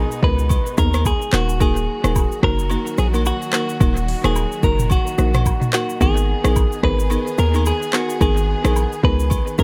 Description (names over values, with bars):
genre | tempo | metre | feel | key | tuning
afrobeats | 109 BPM | 4/4 | swing 58% on 16ths | G# minor | A4 = 440 Hz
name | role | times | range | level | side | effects
direct-recorded clean electric guitar | melody | 0.0-9.6 s | F#4 to B4 | -26 LUFS | equal | tape echo
mallet-like synth pluck | accompaniment | 0.0-9.6 s | A#3 to A#4 | -27 LUFS | equal | chorus, tape echo
clear studio string section | sustained chords | 0.0-9.6 s | B2 to G#4 | -34 LUFS | equal | none
hard-hitting 808-style bass | bass | 0.0-9.6 s | D#1 to D#2 | -21 LUFS | equal | none
afro-pop drum kit | drums | 0.1-9.6 s | handclaps, hi-hat, kick drum, rim click, shaker, toms | -22 LUFS | equal | none
agogo bells and woodblock | percussion | 0.5-9.5 s | none | -36 LUFS | equal | tape echo
room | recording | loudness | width
little or no reverb | echo-heavy mix | -18 LUFS | mono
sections
0.0-9.6 A section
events
none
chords
0.0 G#madd9; 1.3 D#m; 6.0 G#madd9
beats
0.50 1.05 | 1.60 2.15 2.71 3.26 | 3.81 4.36 4.91 5.46 | 6.01 6.56 7.11 7.66 | 8.21 8.76 9.31